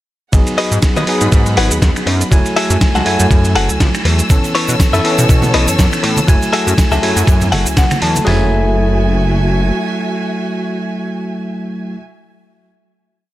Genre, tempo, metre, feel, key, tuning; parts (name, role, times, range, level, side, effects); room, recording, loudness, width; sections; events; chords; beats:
nu-disco, nu disco; 121 BPM; 4/4; swing 56% on 16ths; F# dorian; A4 = 440 Hz
bell-like tine electric piano; accompaniment; 0.3-12.0 s; E3 to G#5; -18 LUFS; equal; digital delay
rich chamber string section; sustained chords; 0.3-12.0 s; A3 to E6; -23 LUFS; equal; sidechain pumping
chorused synth bass; bass; 0.3-9.7 s; F#1 to B2; -15 LUFS; equal; sidechain pumping
dusty soul sampler-style drum kit; drums; 0.3-8.4 s; hi-hat, kick drum, snare drum, toms; -13 LUFS; equal
dusty soul sampler-style drum kit; drums; 0.3-8.2 s; cabasa, finger snaps, hi-hat, ride cymbal, snare drum; -19 LUFS; right 1 dB
direct-recorded clean electric guitar; riff; 0.6-12.0 s; E4 to A5; -19 LUFS; left 3 dB; wide subtle chorus, digital delay
tube shaker and congas; percussion; 4.3-8.2 s; -23 LUFS; right 2 dB
little or no reverb; -11 LUFS; side -15 dB against mid
0.3-8.3 drop; 8.3-12.2 final chord
drop 0.3-8.3; clean electric guitar fill 7.3-8.3
0.3 G#m7; 2.3 F#m9; 4.3 B9sus4; 6.3 F#m9
| 0.34 0.83 1.33 1.82 | 2.32 2.81 3.31 3.81 | 4.30 4.80 5.29 5.79 | 6.29 6.78 7.28 7.77 | 8.27 8.76 9.26 9.76 | 10.25 10.75 11.24 11.74